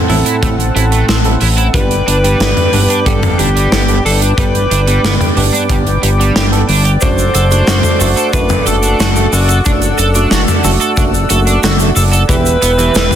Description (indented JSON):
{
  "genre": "synthwave",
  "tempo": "91 BPM",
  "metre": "4/4",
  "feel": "straight",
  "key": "unclear",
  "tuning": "A4 = 440 Hz",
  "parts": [
    { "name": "clear alto saxophone", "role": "melody", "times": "0.0-13.2 s", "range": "D4 to C5", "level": "-18 LUFS", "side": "equal", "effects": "digital delay" },
    { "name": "chorused pulse-width pad", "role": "sustained chords", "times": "0.0-13.2 s", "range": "C4 to E6", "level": "-19 LUFS", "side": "equal", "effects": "sidechain pumping" },
    { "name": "tine electric piano", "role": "stabs", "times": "0.0-13.2 s", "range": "G2 to A4", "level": "-19 LUFS", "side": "right 3 dB", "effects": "vintage 12-bit sampler grit, digital delay" },
    { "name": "crunchy overdriven guitar", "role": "riff", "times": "0.1-13.0 s", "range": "E3 to A4", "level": "-20 LUFS", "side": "right 3 dB", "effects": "analog chorus, digital delay" },
    { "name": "fat analog bass", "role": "bass", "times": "0.1-13.1 s", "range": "E1 to A1", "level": "-14 LUFS", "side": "left 1 dB", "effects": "none" },
    { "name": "gated 80s drum kit", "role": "drums", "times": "0.1-13.2 s", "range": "hi-hat, shaker, snare drum, toms", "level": "-16 LUFS", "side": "equal", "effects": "none" },
    { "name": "kick drum", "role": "drums", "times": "0.4-12.4 s", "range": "none", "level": "-15 LUFS", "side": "equal", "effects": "none" }
  ],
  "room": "light reverb, small room ambience",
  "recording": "dense, heavily limited modern master",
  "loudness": "-9 LUFS",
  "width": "side -10 dB against mid",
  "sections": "0.0-13.2 A section",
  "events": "none",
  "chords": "0.0 Am; 1.7 G; 7.0 D/F#; 12.3 Em"
}